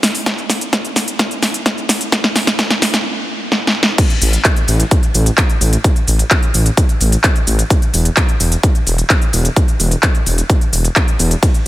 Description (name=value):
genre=EDM, festival progressive house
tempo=129 BPM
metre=4/4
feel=straight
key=unclear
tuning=A4 = 439 Hz
part: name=big-room dance drum kit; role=drums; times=0.0-11.6 s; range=crash cymbal, handclaps, hi-hat, ride cymbal, shaker, snare drum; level=-16 LUFS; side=equal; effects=none
part: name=electronic kick drum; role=drums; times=0.3-11.5 s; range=none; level=-14 LUFS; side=equal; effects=high-pass filter on kick, high-pass filter on room
part: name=detuned saw bass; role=bass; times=4.2-11.4 s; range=E1 to A1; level=-14 LUFS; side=equal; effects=sidechain pumping
room=light reverb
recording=none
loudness=-12 LUFS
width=side -16 dB against mid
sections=0.0-4.0 A section; 4.0-11.7 B section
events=build-up 0.0-4.0; drum fill 0.0-3.1, 3.5-4.0; stop 3.1-4.0; drop 4.0-11.7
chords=none